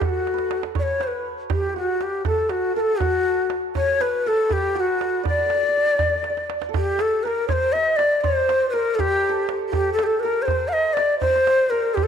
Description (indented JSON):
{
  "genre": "Persian modal ensemble",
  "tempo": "80 BPM (dotted quarters)",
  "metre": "6/8",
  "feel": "straight",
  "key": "unclear",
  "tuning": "A4 = 440 Hz",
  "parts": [
    { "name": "breathy ney", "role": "melody", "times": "0.0-12.1 s", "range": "F#4 to F5+44c", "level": "-20 LUFS", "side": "left 2 dB", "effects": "none" },
    { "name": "santur", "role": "second line", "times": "0.0-12.1 s", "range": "F#4 to Eb5+45c", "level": "-30 LUFS", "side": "right 8 dB", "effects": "tape echo" },
    { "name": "tombak", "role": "percussion", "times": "0.0-12.1 s", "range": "none", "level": "-27 LUFS", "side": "right 4 dB", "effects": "none" }
  ],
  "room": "wet echo chamber reverb, RT60 1.8 s",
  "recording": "1960s-style stereo",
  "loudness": "-19 LUFS",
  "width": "side -8 dB against mid",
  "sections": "0.0-6.7 A section; 6.7-12.1 B section",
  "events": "drum fill 0.3-0.8, 6.2-6.7",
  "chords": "none"
}